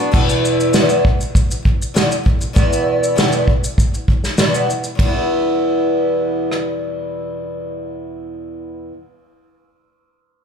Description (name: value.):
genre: acoustic pop.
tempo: 99 BPM.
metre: 4/4.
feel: straight.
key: E minor.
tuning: A4 = 439 Hz.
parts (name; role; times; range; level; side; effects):
picked steel-string acoustic guitar; accompaniment; 0.0-9.0 s; E2 to F#4; -18 LUFS; equal; double-tracked left and right, slapback echo.
mandolin; arpeggios; 0.0-0.7 s; B3 to F#5; -31 LUFS; right 2 dB; slapback echo.
unplugged drum kit; drums; 0.1-6.7 s; crash cymbal, kick drum, ride cymbal, rim click, shaker, snare drum; -16 LUFS; equal; none.
room: light reverb, small room ambience.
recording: live gig heard through the venue's PA, club reverb.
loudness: -14 LUFS.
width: side -7 dB against mid.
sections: 0.1-5.0 A section; 5.0-7.4 B section.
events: none.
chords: 0.1 Em.